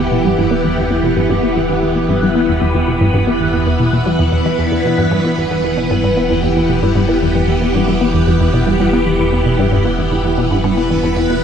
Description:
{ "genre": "ambient, sequencer-driven space music", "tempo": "114 BPM", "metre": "4/4", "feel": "straight", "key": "E minor", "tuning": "A4 = 440 Hz", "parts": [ { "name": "phased string machine", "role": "sustained chords", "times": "0.0-11.4 s", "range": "E3 to F#5", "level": "-16 LUFS", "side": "equal", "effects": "ensemble chorus, phaser" }, { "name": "concert harp", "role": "arpeggios", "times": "0.0-11.4 s", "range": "E3 to E5", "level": "-20 LUFS", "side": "moving between left 4 dB and right 2 dB", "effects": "auto-pan, tape echo" }, { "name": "resonant blip pluck", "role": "riff", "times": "0.0-11.4 s", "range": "E2 to B3", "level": "-16 LUFS", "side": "equal", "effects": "chorus, phaser, tape echo" }, { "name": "round analog bass", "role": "bass", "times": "0.0-11.4 s", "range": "E1", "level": "-25 LUFS", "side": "equal", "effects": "none" } ], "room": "wet huge ambient reverb, RT60 8.2 s", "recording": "none", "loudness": "-12 LUFS", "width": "side -8 dB against mid", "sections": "0.0-11.4 A section", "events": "filter sweep on synth arpeggio sound 0.0-11.4", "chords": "0.0 Em7" }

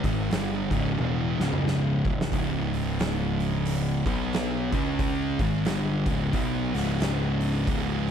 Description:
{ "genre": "stoner and doom metal", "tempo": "90 BPM", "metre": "4/4", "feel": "swing 60% on 8ths", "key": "unclear", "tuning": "A4 = 441 Hz", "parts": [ { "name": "thick fuzz guitar", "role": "riff", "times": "0.0-8.1 s", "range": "C#2 to C#4", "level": "-30 LUFS", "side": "left 11 dB", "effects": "distortion" }, { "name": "thick fuzz guitar", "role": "riff", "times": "0.0-8.1 s", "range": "C#2 to C#4", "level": "-29 LUFS", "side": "right 8 dB", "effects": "distortion" }, { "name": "fuzz picked electric bass", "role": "bass", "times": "0.0-8.1 s", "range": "C#1 to C#2", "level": "-31 LUFS", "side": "equal", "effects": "overdrive" }, { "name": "oversized low-tuned drum kit", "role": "drums", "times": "0.0-8.1 s", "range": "hi-hat, kick drum, snare drum, toms", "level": "-30 LUFS", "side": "equal", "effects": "none" } ], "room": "little or no reverb", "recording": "none", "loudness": "-24 LUFS", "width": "side -8 dB against mid", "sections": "0.0-8.1 A section", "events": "drum fill 1.0-2.3", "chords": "0.0 C#m; 4.0 B5; 4.7 C#5" }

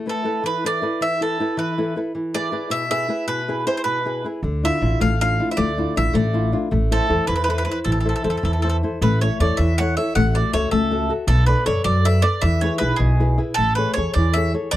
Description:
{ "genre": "italian folk, Italian serenade", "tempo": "105 BPM (dotted quarters)", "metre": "6/8", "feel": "straight", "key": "A harmonic minor, A major from 9.0 s", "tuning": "A4 = 440 Hz", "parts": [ { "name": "flamenco guitar", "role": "accompaniment", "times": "0.0-14.8 s", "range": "B2 to E5", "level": "-23 LUFS", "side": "left 2 dB", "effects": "none" }, { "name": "bowl-back mandolin", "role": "melody", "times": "0.1-14.8 s", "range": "G#4 to F#5", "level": "-23 LUFS", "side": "right 2 dB", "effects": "none" }, { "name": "upright bass", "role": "bass", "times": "4.4-14.8 s", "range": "A1 to F#2", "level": "-20 LUFS", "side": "equal", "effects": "none" } ], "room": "little or no reverb", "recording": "dry, close 1970s-style studio recording", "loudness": "-18 LUFS", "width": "side -14 dB against mid", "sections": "0.0-9.0 A section; 9.0-14.8 B section", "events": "none", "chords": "0.0 Asus2; 2.1 E; 4.4 Dmadd9; 6.7 Am; 9.0 A; 10.2 F#m7/A; 11.3 Bm7; 12.4 E; 13.6 Amaj7" }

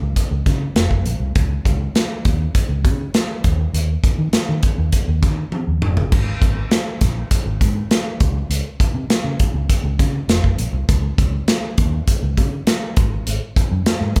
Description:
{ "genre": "polished 1980s jazz-funk pop", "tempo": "101 BPM", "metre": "4/4", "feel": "straight", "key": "unclear", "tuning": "A4 = 440 Hz", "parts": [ { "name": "vintage muted fingered electric bass", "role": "bass", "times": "0.0-14.1 s", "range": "F1 to Eb3", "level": "-23 LUFS", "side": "equal", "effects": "none" }, { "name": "modern studio drum kit", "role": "drums", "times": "0.2-14.2 s", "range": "crash cymbal, hi-hat, kick drum, snare drum, toms", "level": "-20 LUFS", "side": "equal", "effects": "none" } ], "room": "moderate large studio reverb, RT60 1.1 s", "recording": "band playing live in one room", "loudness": "-19 LUFS", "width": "mono", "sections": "0.0-14.2 A section", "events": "drum fill 5.5-6.1", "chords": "none" }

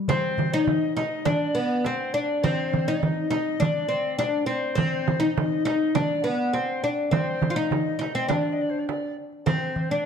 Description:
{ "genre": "Arabic maqam ensemble", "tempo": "102 BPM", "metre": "4/4", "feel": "straight", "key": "unclear", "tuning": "A4 = 440 Hz", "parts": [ { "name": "oud", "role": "melody", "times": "0.1-10.1 s", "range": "B3 to F4", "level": "-24 LUFS", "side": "left 2 dB", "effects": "none" }, { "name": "breathy alto recorder", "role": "second line", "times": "0.1-10.1 s", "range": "B4-20c to E5", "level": "-32 LUFS", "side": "left 2 dB", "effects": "none" }, { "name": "darbuka", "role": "percussion", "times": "0.1-9.9 s", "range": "none", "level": "-30 LUFS", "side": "left 1 dB", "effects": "none" }, { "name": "frame drum", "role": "percussion", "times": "0.1-9.6 s", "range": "none", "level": "-28 LUFS", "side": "right 9 dB", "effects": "none" } ], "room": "moderate recital hall reverb, RT60 1.2 s", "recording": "dark, warm production", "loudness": "-22 LUFS", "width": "side -7 dB against mid", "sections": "0.1-10.1 A section", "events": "none", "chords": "none" }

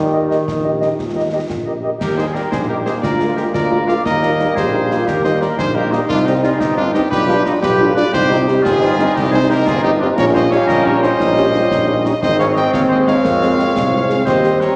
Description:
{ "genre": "military-style march for wind band", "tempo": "118 BPM (dotted quarters)", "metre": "6/8", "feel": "straight", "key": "Eb major", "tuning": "A4 = 439 Hz", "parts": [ { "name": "mellow euphonium", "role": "second line", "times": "0.0-14.8 s", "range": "Ab3 to Ab4", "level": "-23 LUFS", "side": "equal", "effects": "none" }, { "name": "bright trombone section", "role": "sustained chords", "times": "0.0-14.8 s", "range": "Eb3 to F4", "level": "-22 LUFS", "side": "equal", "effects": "none" }, { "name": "mellow tuba", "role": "bass", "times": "0.0-14.7 s", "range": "G1 to F2", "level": "-23 LUFS", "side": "equal", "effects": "none" }, { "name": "warm cornet", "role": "melody", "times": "0.1-14.8 s", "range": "F4 to G5", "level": "-24 LUFS", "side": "equal", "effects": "none" }, { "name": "mellow woodwind section", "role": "second line", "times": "0.1-14.8 s", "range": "D4 to Eb5", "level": "-25 LUFS", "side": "equal", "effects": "none" }, { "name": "mellow French horn section", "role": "accompaniment", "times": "0.1-14.7 s", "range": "G3 to Eb5", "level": "-23 LUFS", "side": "equal", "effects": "none" }, { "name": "concert snare drum, concert bass drum and clash cymbals", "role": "drums", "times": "0.3-14.8 s", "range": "none", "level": "-29 LUFS", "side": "equal", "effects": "none" } ], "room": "wet scoring stage reverb, RT60 2.0 s", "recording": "none", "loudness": "-16 LUFS", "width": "mono", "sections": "0.0-2.0 A section; 2.0-14.8 B section", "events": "none", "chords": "0.0 Eb; 3.0 Bb7/D; 4.1 Eb; 6.1 Cm; 7.1 G7/B; 8.1 Cm; 10.2 Eb7/Bb; 12.2 Ab; 13.2 Fm" }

